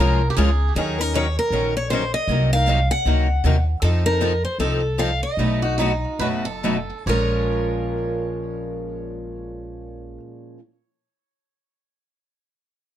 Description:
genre	acoustic string swing (jazz manouche)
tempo	133-157 BPM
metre	4/4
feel	swing 61% on 8ths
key	Bb minor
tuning	A4 = 439 Hz
part	picked steel-string acoustic guitar	melody	0.0-10.2 s	Ab4 to Gb5	-24 LUFS	equal	none
part	picked swing-style acoustic guitar	second line	0.0-0.7, 5.6-10.2 s	D#4 to Db5	-29 LUFS	right 2 dB	tape echo
part	picked steel-string acoustic guitar	accompaniment	0.0-10.6 s	Bb2 to Bb4	-27 LUFS	left 6 dB	none
part	picked steel-string acoustic guitar	accompaniment	0.0-10.6 s	Bb2 to B4	-28 LUFS	right 5 dB	none
part	upright bass	bass	0.0-10.2 s	F#1 to F2	-22 LUFS	equal	none
room	little or no reverb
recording	close, detailed microphones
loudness	-19 LUFS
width	side -11 dB against mid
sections	0.8-7.1 A section; 7.1-10.7 B section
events	slowing down 3.8-7.1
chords	0.0 Bbm7; 0.8 Ebm7; 2.3 Cm7b5; 3.8 F7; 5.4 B7; 7.1 Bbm7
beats	0.38 | 0.76 1.14 1.52 1.90 | 2.28 2.67 3.05 3.43 | 3.81 4.20 4.58 4.98 | 5.38 5.78 6.20 6.63 | 7.07 7.52 7.97 8.42 | 8.87 9.32 9.77 10.22

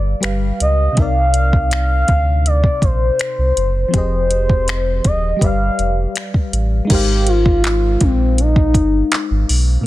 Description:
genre	contemporary R&B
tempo	81 BPM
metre	4/4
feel	straight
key	unclear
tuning	A4 = 436 Hz
part	gliding portamento lead	melody	0.0-9.5 s	C4 to F5	-19 LUFS	left 1 dB	chorus, tape echo
part	FM electric piano with auto-pan	accompaniment	0.0-9.9 s	Bb2 to F5	-24 LUFS	left 2 dB	none
part	sub bass with octave	bass	0.0-9.8 s	Eb1 to D2	-16 LUFS	equal	none
part	smooth R&B drum kit	drums	0.2-9.7 s	crash cymbal, finger snaps, handclaps, hi-hat, kick drum	-17 LUFS	equal	vintage 12-bit sampler grit, soft clipping on snare
room	little or no reverb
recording	dense, heavily limited modern master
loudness	-13 LUFS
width	side -16 dB against mid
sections	0.0-6.9 A section; 6.9-9.9 B section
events	none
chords	0.0 G7; 1.0 Cm7; 3.9 Fm9; 5.4 G7; 6.9 Ab69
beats	0.23 | 0.97 1.71 2.45 3.19 | 3.93 4.67 5.42 6.16 | 6.90 7.64 8.38 9.12 | 9.86

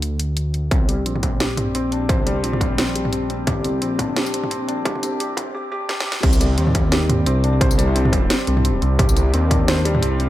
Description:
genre	half-time drum and bass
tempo	174 BPM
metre	4/4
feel	swing 56% on 16ths, half-time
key	C minor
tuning	A4 = 442 Hz
part	dark detuned saw bass	bass	0.0-10.3 s	Bb1 to Eb2	-21 LUFS	equal	tube saturation
part	drum and bass drum kit	drums	0.0-10.3 s	crash cymbal, hi-hat, snare drum, tambourine, toms	-23 LUFS	equal	none
part	felt-muted upright piano	arpeggios	0.7-10.3 s	G3 to C5	-23 LUFS	left 1 dB	low-pass filter, ping-pong delay
part	electronic kick drum	drums	0.7-9.6 s	none	-20 LUFS	equal	distortion, overdrive
room	light reverb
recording	high-pass filter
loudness	-17 LUFS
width	side -14 dB against mid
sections	0.7-6.2 A section; 6.2-10.3 B section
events	build-up 0.7-6.2; filter sweep on felt piano 0.7-6.2; filter sweep 0.7-6.2; drum fill 5.9-6.2; drop 6.2-10.3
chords	0.0 N.C.; 0.7 C5; 6.2 Cm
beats	0.02 0.37 | 0.71 1.06 1.40 1.75 | 2.09 2.44 2.78 3.13 | 3.47 3.82 4.16 4.51 | 4.85 5.20 5.54 5.89 | 6.23 6.58 6.92 7.26 | 7.61 7.96 8.30 8.64 | 8.99 9.33 9.68 10.02

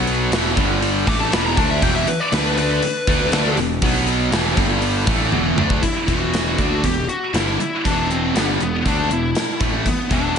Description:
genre	hard rock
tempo	120 BPM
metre	4/4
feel	straight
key	E minor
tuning	A4 = 440 Hz
part	heavy high-gain guitar	riff	0.0-10.4 s	E2 to D4	-24 LUFS	equal	distortion
part	high-gain distorted guitar	riff	0.0-10.4 s	E2 to D4	-23 LUFS	right 1 dB	distortion
part	fuzz picked electric bass	bass	0.0-10.4 s	E1 to D2	-24 LUFS	equal	overdrive
part	gated 80s drum kit	drums	0.1-10.4 s	hi-hat, kick drum, snare drum, toms	-22 LUFS	equal	none
part	high-gain lead guitar	melody	1.1-10.4 s	B3 to D6	-23 LUFS	left 2 dB	distortion, slapback echo
room	moderate scoring stage reverb, RT60 2.1 s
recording	big arena sound, nothing above 10.5 kHz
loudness	-16 LUFS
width	side -7 dB against mid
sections	0.0-5.8 A section; 5.8-10.4 B section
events	lead electric guitar solo 0.0-5.8; drum fill 5.3-5.8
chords	0.3 E5; 0.6 G5; 1.1 E5; 2.3 D5; 2.8 E5; 3.8 B5; 4.3 E5; 4.6 G5; 5.1 E5; 5.8 Em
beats	0.32 0.82 1.32 | 1.82 2.32 2.82 3.32 | 3.82 4.32 4.82 5.33 | 5.83 6.33 6.83 7.34 | 7.84 8.34 8.85 9.35 | 9.86 10.36

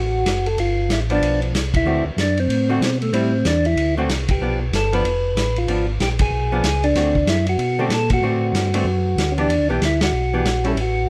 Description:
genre	soul jazz organ trio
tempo	189 BPM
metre	4/4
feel	swing 61% on 8ths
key	D mixolydian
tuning	A4 = 440 Hz
part	percussive tonewheel organ	melody	0.0-11.1 s	A3 to B4	-24 LUFS	equal	slow rotary speaker
part	mellow tonewheel organ	bass	0.0-11.1 s	F1 to B2	-24 LUFS	equal	chorus vibrato, slow rotary speaker
part	vintage drum kit	drums	0.3-10.9 s	hi-hat, kick drum, ride cymbal, snare drum	-27 LUFS	equal	none
part	archtop guitar, miked and amplified	accompaniment	1.1-10.8 s	D3 to G4	-28 LUFS	equal	none
room	light reverb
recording	none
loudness	-19 LUFS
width	mono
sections	0.0-11.1 A section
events	band accent 1.7, 4.2, 6.2, 8.1, 10.0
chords	0.0 D (rootless); 0.6 G7; 1.9 D7; 3.1 Am7; 3.8 D7; 4.4 G7; 5.7 G#dim7; 7.0 D7; 9.5 Em7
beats	0.26 | 0.58 0.90 1.22 1.54 | 1.86 2.18 2.50 2.81 | 3.13 3.45 3.77 4.09 | 4.41 4.72 5.04 5.36 | 5.68 6.00 6.32 6.63 | 6.95 7.27 7.59 7.90 | 8.22 8.54 8.86 9.17 | 9.49 9.81 10.13 10.44 | 10.76 11.08

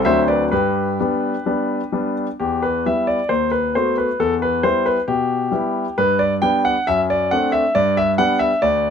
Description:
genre	classical-period piano sonatina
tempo	135 BPM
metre	4/4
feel	rubato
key	E minor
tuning	A4 = 441 Hz
part	clear grand piano	solo	0.0-8.9 s	D2 to G5	-16 LUFS	left 1 dB	none
room	light reverb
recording	close, detailed microphones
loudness	-16 LUFS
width	side -7 dB against mid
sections	0.0-2.4 A section; 2.4-8.9 B section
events	none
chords	0.1 D7; 0.5 G; 2.4 Em; 3.3 B7/D#; 4.2 Em; 6.0 G; 6.9 D7/F#; 7.7 G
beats	0.06 | 0.52 0.99 1.46 1.93 | 2.39 2.85 3.30 3.75 | 4.19 4.64 5.08 5.53 | 5.97 6.41 6.86 7.30 | 7.74 8.18 8.62

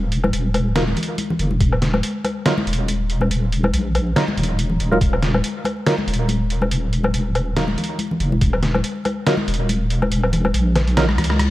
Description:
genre	deep dubstep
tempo	141 BPM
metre	4/4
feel	swing 56% on 16ths, half-time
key	Eb minor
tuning	A4 = 440 Hz
part	deep soft wobble bass	bass	0.0-11.5 s	Eb1 to Db2	-20 LUFS	equal	chorus
part	trip hop sampler-style drum kit	drums	0.1-11.5 s	hi-hat, rim click, snare drum, woodblock	-23 LUFS	equal	none
part	congas	percussion	0.2-11.5 s	none	-24 LUFS	left 2 dB	dub echo
part	percussive organ stab	stabs	0.8-11.1 s	Gb3 to Bb4	-25 LUFS	right 2 dB	wide subtle chorus, dub echo
part	electronic kick drum	drums	1.6-1.7, 5.0-5.1, 8.4-8.5 s	none	-18 LUFS	equal	none
part	reverse cymbal	sound effects	11.1-11.5 s	none	-34 LUFS	left 4 dB	none
room	light reverb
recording	vinyl crackle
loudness	-17 LUFS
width	side -16 dB against mid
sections	0.0-11.5 A section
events	drum fill 11.0-11.5; reverse cymbal 11.1-11.5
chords	0.0 Ebsus2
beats	0.33 0.76 1.18 | 1.61 2.03 2.46 2.88 | 3.31 3.73 4.16 4.59 | 5.01 5.44 5.86 6.29 | 6.71 7.14 7.57 7.99 | 8.42 8.84 9.27 9.69 | 10.12 10.54 10.97 11.39

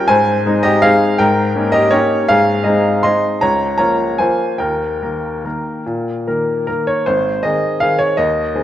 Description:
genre	classical, piano waltz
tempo	138-170 BPM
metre	3/4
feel	rubato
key	Ab major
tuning	A4 = 438 Hz
part	clear upright piano	solo	0.0-8.6 s	Ab1 to C6	-13 LUFS	equal	none
room	moderate concert hall reverb, RT60 2.0 s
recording	worn, warbling old tape, cassette tape, warbly pitch drift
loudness	-13 LUFS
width	side -12 dB against mid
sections	0.0-7.1 A section; 7.1-8.6 B section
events	none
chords	0.1 Ab; 1.2 Eb7/Ab; 2.3 Ab; 3.4 Bbm/Db; 4.6 Eb; 7.1 Ab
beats	| 0.09 0.46 0.84 | 1.21 1.56 1.94 | 2.31 2.67 3.05 | 3.43 3.80 4.20 | 4.60 5.01 5.45 | 5.87 6.27 6.68 | 7.08 7.45 7.83 | 8.20 8.56

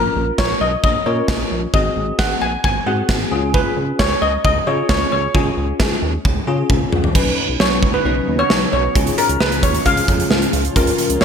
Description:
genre	synth-pop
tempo	133 BPM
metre	4/4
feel	straight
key	unclear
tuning	A4 = 441 Hz
part	steel pan	melody	0.0-11.2 s	G#4 to G#5	-20 LUFS	left 1 dB	ping-pong delay
part	bell-like tine electric piano	accompaniment	0.0-11.2 s	B#3 to B4	-23 LUFS	left 3 dB	ensemble chorus
part	chorused synth bass	bass	0.0-11.2 s	G#1 to C#3	-22 LUFS	equal	none
part	gated 80s drum kit	drums	0.4-11.2 s	crash cymbal, hi-hat, kick drum, snare drum, toms	-18 LUFS	right 1 dB	none
part	soft string machine	sustained chords	7.2-11.2 s	G#2 to F#4	-25 LUFS	equal	phaser, ensemble chorus
room	moderate lush hall reverb, RT60 1.9 s, small room ambience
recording	bright 1980s-style digital production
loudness	-15 LUFS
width	side -7 dB against mid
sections	0.0-7.2 A section; 7.2-11.2 B section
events	drum fill 6.7-7.2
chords	0.0 A#m; 1.7 G#7; 3.3 C#; 7.2 Badd9; 9.0 C#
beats	0.38 0.83 1.29 | 1.74 2.19 2.64 3.09 | 3.54 3.99 4.44 4.89 | 5.35 5.80 6.25 6.70 | 7.15 7.60 8.05 8.50 | 8.96 9.41 9.86 10.31 | 10.76 11.21

